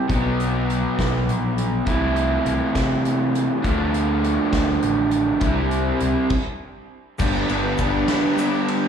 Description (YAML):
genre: indie rock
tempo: 68 BPM (dotted quarters)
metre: 6/8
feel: straight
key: G mixolydian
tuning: A4 = 440 Hz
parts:
  - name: raw garage guitar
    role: riff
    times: 0.0-8.9 s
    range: G2 to E4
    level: -23 LUFS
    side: left 5 dB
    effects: overdrive, spring reverb, slapback echo
  - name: raw garage guitar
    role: riff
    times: 0.0-8.9 s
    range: G2 to E4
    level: -24 LUFS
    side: right 9 dB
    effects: overdrive, lush chorus, tape echo, slapback echo
  - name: growling picked electric bass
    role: bass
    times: 0.1-8.0 s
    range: G1 to C3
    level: -24 LUFS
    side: equal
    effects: overdrive
  - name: loose indie drum kit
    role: drums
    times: 0.1-8.8 s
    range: crash cymbal, hi-hat, kick drum, ride cymbal, snare drum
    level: -27 LUFS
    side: equal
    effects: none
  - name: dark analog pad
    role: sustained chords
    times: 7.9-8.9 s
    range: D4 to B5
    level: -31 LUFS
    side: left 2 dB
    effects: chorus
  - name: egg shaker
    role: percussion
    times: 7.2-8.5 s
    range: none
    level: -47 LUFS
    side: left 4 dB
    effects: none
room: light reverb, studio reverb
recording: live gig heard through the venue's PA, club reverb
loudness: -18 LUFS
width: side -7 dB against mid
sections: 0.0-7.2 A section; 7.2-8.9 B section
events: stop 6.3-7.2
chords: 0.1 B; 1.9 Am/C; 3.6 Dm; 5.4 C; 7.2 G